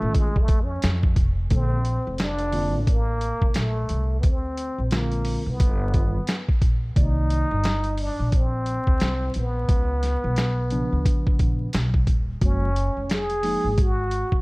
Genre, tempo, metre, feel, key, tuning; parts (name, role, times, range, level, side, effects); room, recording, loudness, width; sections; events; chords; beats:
hip hop, jazz-hop; 88 BPM; 4/4; swing 61% on 16ths; A4 = 438 Hz
trombone with plunger mute; melody; 0.0-14.4 s; G#3 to Ab4; -28 LUFS; equal; slapback echo
mellow tine electric piano; accompaniment; 0.0-13.7 s; C3 to D5; -29 LUFS; equal; medium stereo tremolo
upright bass; bass; 0.0-14.4 s; Eb1 to F2; -25 LUFS; equal
boom bap sampler-style drum kit; drums; 0.1-14.4 s; hi-hat, kick drum, snare drum; -22 LUFS; equal
studio reverb; dark, warm production, vinyl crackle; -20 LUFS; side -25 dB against mid
0.0-1.5 A section; 1.5-14.4 B section
trombone solo 0.0-1.5
0.0 F7b13; 1.5 Bbmaj9; 4.2 Dm7b5; 5.6 G7alt; 7.0 Cm9; 9.7 Db7b9; 12.4 Gbmaj9
0.14 0.83 | 1.51 2.19 2.87 3.55 | 4.24 4.92 5.60 6.28 | 6.96 7.64 8.33 9.01 | 9.69 10.37 11.05 11.73 | 12.42 13.10 13.78